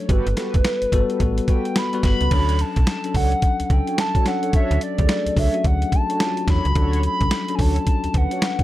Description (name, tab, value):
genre	R&B, new jack swing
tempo	108 BPM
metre	4/4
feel	swing 62% on 16ths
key	unclear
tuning	A4 = 440 Hz
part	hollow clarinet-like synth lead	melody	0.0-8.6 s	B4 to B5	-25 LUFS	right 1 dB	chorus, phaser
part	bell-like tine electric piano	accompaniment	0.0-8.6 s	F#3 to B4	-26 LUFS	left 5 dB	none
part	mellow synth brass	stabs	0.1-8.6 s	D4 to C#5	-31 LUFS	right 1 dB	chorus
part	slap-like FM bass	bass	0.1-8.3 s	F#1 to E2	-21 LUFS	equal	none
part	boom bap sampler-style drum kit	drums	0.1-8.6 s	crash cymbal, hi-hat, kick drum, snare drum	-20 LUFS	equal	none
room	digital ambience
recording	dark, warm production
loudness	-18 LUFS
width	side -15 dB against mid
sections	0.0-2.3 A section; 2.3-8.6 B section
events	none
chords	0.1 Gmaj9; 2.3 Dmaj7